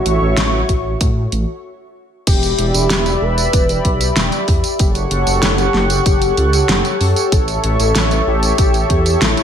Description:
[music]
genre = synthwave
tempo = 95 BPM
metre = 4/4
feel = straight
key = E dorian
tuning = A4 = 440 Hz
[part]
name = warm velvety synth lead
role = melody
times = 0.0-9.4 s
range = E4 to B4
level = -20 LUFS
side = left 1 dB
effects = chorus, ping-pong delay
[part]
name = warm analog pad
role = sustained chords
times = 0.0-9.4 s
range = G4 to C#6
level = -20 LUFS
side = equal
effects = chorus, vintage 12-bit sampler grit, sidechain pumping
[part]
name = dark detuned saw bass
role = bass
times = 0.1-9.3 s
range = E1 to A2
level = -18 LUFS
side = equal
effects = sidechain pumping
[part]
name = pop drum kit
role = drums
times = 0.1-9.4 s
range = crash cymbal, hi-hat, snare drum, tambourine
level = -19 LUFS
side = equal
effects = studio reverb, gated reverb
[part]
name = electronic kick drum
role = drums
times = 0.7-9.0 s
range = none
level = -16 LUFS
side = equal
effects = studio reverb
[sound]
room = light reverb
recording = none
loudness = -13 LUFS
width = side -8 dB against mid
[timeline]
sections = 0.0-2.3 A section; 2.3-9.4 B section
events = stop 1.6-2.3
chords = 0.0 A; 2.3 Em7; 4.8 F#m; 7.3 A

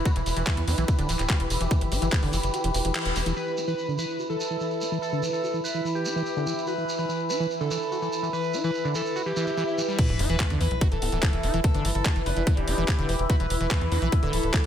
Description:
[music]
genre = psychedelic trance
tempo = 145 BPM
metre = 4/4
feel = straight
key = E minor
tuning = A4 = 441 Hz
[part]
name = overtone-sweeping drone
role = sustained chords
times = 0.0-14.7 s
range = E3 to G4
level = -32 LUFS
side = right 1 dB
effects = chorus, built-in reverb, phaser, sidechain pumping
[part]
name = tight sequencer bass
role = bass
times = 0.0-3.3, 10.1-14.7 s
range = D1 to E2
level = -27 LUFS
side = equal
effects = none
[part]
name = ethereal airy pad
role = texture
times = 0.0-14.7 s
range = E4 to B5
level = -34 LUFS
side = equal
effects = ensemble chorus, built-in reverb, sidechain pumping
[part]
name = liquid acid bass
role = riff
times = 0.1-14.7 s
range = D3 to F#4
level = -32 LUFS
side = moving between left 5 dB and right 4 dB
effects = chorus, auto-pan, sidechain pumping, dub echo
[part]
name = electronic kick drum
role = drums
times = 0.1-2.2, 10.0-14.6 s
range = none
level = -24 LUFS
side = equal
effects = studio reverb
[part]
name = garage drum kit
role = drums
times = 0.1-3.3, 10.0-14.7 s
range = crash cymbal, handclaps, hi-hat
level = -32 LUFS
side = equal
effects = low-pass filter on hats, studio reverb, low-pass filter on snare, low-pass filter on cymbals
[part]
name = shekere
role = percussion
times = 0.1-10.0 s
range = none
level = -36 LUFS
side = right 2 dB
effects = none
[part]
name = overdriven synth lead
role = melody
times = 3.4-14.7 s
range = G4 to B4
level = -32 LUFS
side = right 1 dB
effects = phaser, sidechain pumping, dub echo
[part]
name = swell and sub drop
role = sound effects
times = 9.3-11.6 s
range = none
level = -33 LUFS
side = left 1 dB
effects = none
[part]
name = formant-sweep wobble bass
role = second line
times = 11.0-12.8 s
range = B3 to D4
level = -42 LUFS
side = left 3 dB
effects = none
[sound]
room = light reverb, digital ambience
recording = none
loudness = -23 LUFS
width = side -9 dB against mid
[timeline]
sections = 0.0-3.4 A section; 3.4-10.0 B section; 10.0-14.7 C section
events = kick drops out 2.5-3.4; band accent 3.0; filter sweep on acid bass 3.4-10.0; swell 9.3-10.0; drop 10.0-14.7; impact 10.0-11.6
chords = 0.0 E5

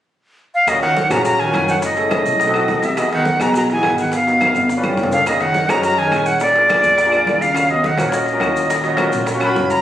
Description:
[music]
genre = Afro-Cuban jazz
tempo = 209 BPM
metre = 4/4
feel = straight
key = Eb minor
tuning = A4 = 440 Hz
[part]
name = breathy bright jazz flute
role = melody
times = 0.5-9.8 s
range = Db5 to Cb6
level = -16 LUFS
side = equal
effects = none
[part]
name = breathy baritone saxophone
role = second line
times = 0.7-9.8 s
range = A2 to Gb3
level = -24 LUFS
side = right 1 dB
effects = none
[part]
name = warm grand piano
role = accompaniment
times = 0.7-9.7 s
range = B3 to Db5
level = -20 LUFS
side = left 1 dB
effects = none
[part]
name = upright bass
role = bass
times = 0.7-9.8 s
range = Gb1 to Gb2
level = -29 LUFS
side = equal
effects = none
[part]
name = bongos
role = percussion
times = 0.7-9.8 s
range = none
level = -30 LUFS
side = left 3 dB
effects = none
[part]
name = claves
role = percussion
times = 0.7-9.6 s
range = none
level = -31 LUFS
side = left 2 dB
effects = none
[part]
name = congas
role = percussion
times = 0.7-9.7 s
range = none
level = -27 LUFS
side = left 1 dB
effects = none
[part]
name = maracas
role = percussion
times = 0.7-9.8 s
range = none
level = -36 LUFS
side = left 1 dB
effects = none
[part]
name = timbales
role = percussion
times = 0.7-9.8 s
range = none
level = -27 LUFS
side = right 4 dB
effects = none
[sound]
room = moderate studio reverb, RT60 0.9 s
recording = recorded on a phone in the room, studio reverb, compression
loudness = -14 LUFS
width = side -11 dB against mid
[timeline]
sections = 0.7-9.8 A section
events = drum fill 4.5-5.3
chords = 0.0 N.C.; 0.7 Ebm7; 1.8 Gbm9; 2.4 B7b9; 3.0 Emaj9; 4.1 Abm7; 4.7 G7#11; 5.3 Gb69; 6.4 Bb7; 7.6 Ebm7

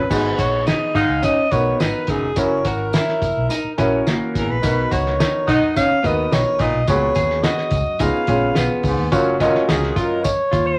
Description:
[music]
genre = uptempo 1960s-style soul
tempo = 106 BPM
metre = 4/4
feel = straight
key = F# major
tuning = A4 = 440 Hz
[part]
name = bright alto saxophone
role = melody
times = 0.0-10.8 s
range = G#4 to E#5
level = -24 LUFS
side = equal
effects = none
[part]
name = semi-hollow electric guitar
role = riff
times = 0.0-10.7 s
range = A#3 to G#4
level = -27 LUFS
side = equal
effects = none
[part]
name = warm baritone saxophone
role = riff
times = 0.0-9.5 s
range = E2 to B2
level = -29 LUFS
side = equal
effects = none
[part]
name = vintage muted fingered electric bass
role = bass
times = 0.0-10.7 s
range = E#1 to F#2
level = -27 LUFS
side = equal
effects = none
[part]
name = warm upright piano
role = accompaniment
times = 0.1-10.2 s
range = B3 to D#5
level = -25 LUFS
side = equal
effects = none
[part]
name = cloth-damped thuddy drum kit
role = drums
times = 0.1-10.7 s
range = crash cymbal, hi-hat, kick drum, snare drum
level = -25 LUFS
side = equal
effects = none
[part]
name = tambourine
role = percussion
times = 0.1-10.7 s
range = none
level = -40 LUFS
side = equal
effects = none
[part]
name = bright saxophone section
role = second line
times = 1.0-1.4, 5.5-5.9 s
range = D#3 to D#4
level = -21 LUFS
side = equal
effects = none
[sound]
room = moderate small room reverb, RT60 0.5 s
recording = vinyl crackle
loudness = -19 LUFS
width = mono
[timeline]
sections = 0.1-9.1 A section; 9.1-10.8 B section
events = none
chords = 0.1 G#m7; 2.4 F#7; 4.6 Bmaj7; 6.9 C#7sus4; 8.0 C#7; 9.1 F#maj7

